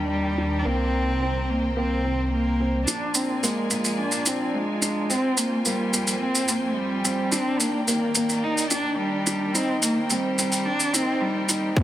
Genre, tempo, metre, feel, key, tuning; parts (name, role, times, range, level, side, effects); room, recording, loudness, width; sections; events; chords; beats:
piano and strings electronica; 108 BPM; 4/4; straight; C minor; A4 = 440 Hz
rich cello; melody; 0.0-11.8 s; G3 to Eb4; -25 LUFS; equal; low-pass filter
rich studio string section; sustained chords; 0.0-11.8 s; Eb3 to Ab5; -33 LUFS; left 2 dB; sidechain pumping
felt-muted upright piano; riff; 0.0-11.8 s; Bb3 to Eb4; -28 LUFS; right 1 dB
dark detuned saw bass; bass; 0.0-11.8 s; Bb1 to F2; -32 LUFS; equal; sidechain pumping, high-pass filter
shaker; drums; 2.9-11.8 s; -27 LUFS; equal; high-pass filter on perc, high-pass filter on room
electronic kick drum; drums; 11.8 s; -18 LUFS; equal
light reverb, studio reverb; high-pass filter; -21 LUFS; side -13 dB against mid
0.0-2.9 A section; 2.9-11.8 B section
build-up 2.9-11.8; filter sweep on cello 2.9-11.8
0.0 Ebmaj7; 0.7 Cm7; 2.9 Bb7; 5.1 Fmadd9; 7.3 Ebmaj7; 9.5 Cm7
0.10 | 0.66 1.21 1.77 2.33 | 2.88 3.44 3.99 4.55 | 5.10 5.66 6.21 6.77 | 7.33 7.88 8.44 8.99 | 9.55 10.10 10.66 11.21 | 11.77